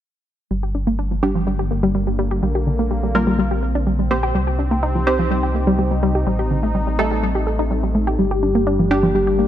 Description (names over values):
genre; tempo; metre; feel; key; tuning
techno; 125 BPM; 4/4; straight; G minor; A4 = 437 Hz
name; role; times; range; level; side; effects
sweeping resonant pad; sustained chords; 0.5-9.5 s; C3 to G4; -25 LUFS; left 1 dB; chorus
wide unison pluck; arpeggios; 0.5-9.5 s; D3 to Bb4; -21 LUFS; equal; cassette tape, ping-pong delay
dark detuned saw bass; bass; 0.5-9.5 s; G1 to C2; -22 LUFS; equal; tube saturation
filtered dub chord stab; stabs; 1.2-9.5 s; G3 to C5; -23 LUFS; right 2 dB; chorus, ping-pong delay
soft octave-layered synth lead; melody; 8.2-9.5 s; G4; -20 LUFS; left 2 dB; chorus, phaser
room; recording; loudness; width
light reverb; none; -17 LUFS; side -11 dB against mid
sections
0.5-9.5 A section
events
filter sweep on analog synth pad 0.5-9.5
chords
0.5 Gm; 2.4 Bbadd9; 4.3 Cm; 6.3 Adim; 8.2 Gm